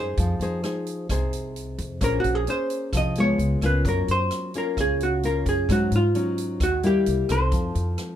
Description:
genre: bossa nova.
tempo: 131 BPM.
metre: 4/4.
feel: straight.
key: unclear.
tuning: A4 = 440 Hz.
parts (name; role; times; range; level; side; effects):
hollow-body jazz guitar; melody; 0.0-8.2 s; F4 to Eb5; -25 LUFS; equal; none.
nylon-string guitar; accompaniment; 0.0-8.2 s; Ab2 to C5; -27 LUFS; left 1 dB; none.
upright bass; bass; 0.0-8.0 s; Bb1 to Ab2; -26 LUFS; equal; none.
swinging big-band drum kit; drums; 0.2-8.1 s; hi-hat, kick drum, rim click; -30 LUFS; right 1 dB; none.
room: light reverb.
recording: none.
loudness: -21 LUFS.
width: side -10 dB against mid.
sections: 0.0-8.2 A section.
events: none.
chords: 0.2 Fm7; 2.0 Bbm9; 3.4 Db7; 3.8 Gbmaj7; 5.7 Ab7sus4; 7.1 C7; 7.5 F7.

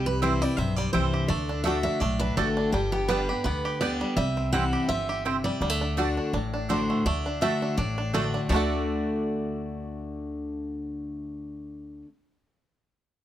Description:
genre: bluegrass.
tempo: 167 BPM.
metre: 4/4.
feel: swing 54% on 8ths.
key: D mixolydian.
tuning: A4 = 441 Hz.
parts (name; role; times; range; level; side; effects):
picked steel-string acoustic guitar; melody; 0.0-12.0 s; G4 to F#5; -30 LUFS; right 2 dB; none.
picked steel-string acoustic guitar; accompaniment; 0.0-12.1 s; G2 to G4; -29 LUFS; left 3 dB; none.
bluegrass banjo; arpeggios; 0.0-12.1 s; G3 to A4; -32 LUFS; right 2 dB; none.
upright bass; bass; 0.0-12.0 s; G1 to D2; -31 LUFS; equal; none.
mandolin; stabs; 0.2-12.1 s; A3 to A5; -32 LUFS; right 7 dB; none.
room: light reverb.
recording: close, detailed microphones.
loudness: -24 LUFS.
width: side -12 dB against mid.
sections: 0.0-7.1 A section; 7.1-8.5 B section; 8.5-11.4 C section.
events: none.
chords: 0.0 C; 1.3 D; 2.7 G; 4.2 C; 5.6 D.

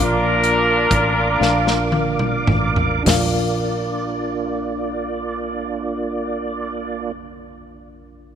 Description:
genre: slow gospel.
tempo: 33-45 BPM (dotted quarters).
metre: 6/8.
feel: straight.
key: Bb major.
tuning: A4 = 440 Hz.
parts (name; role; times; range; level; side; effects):
mellow horn section; melody; 0.0-1.9 s; D4 to Bb4; -18 LUFS; equal; none.
mellow tine electric piano; accompaniment; 0.0-8.4 s; Bb1 to F5; -26 LUFS; left 3 dB; medium stereo tremolo.
tonewheel organ; sustained chords; 0.0-7.1 s; Bb3 to D6; -24 LUFS; right 4 dB; slow rotary speaker, chorus vibrato.
fingered electric bass; bass; 0.0-7.1 s; A1 to Bb1; -23 LUFS; equal; none.
modern studio drum kit; drums; 0.4-3.3 s; hi-hat, kick drum, snare drum, toms; -21 LUFS; right 1 dB; none.
room: moderate lush hall reverb, RT60 3.2 s.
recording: none.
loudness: -17 LUFS.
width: side -8 dB against mid.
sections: 0.0-3.1 A section; 3.1-6.7 B section.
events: slowing down 0.0-3.1; drum fill 1.4-3.1.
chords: 0.0 Bb.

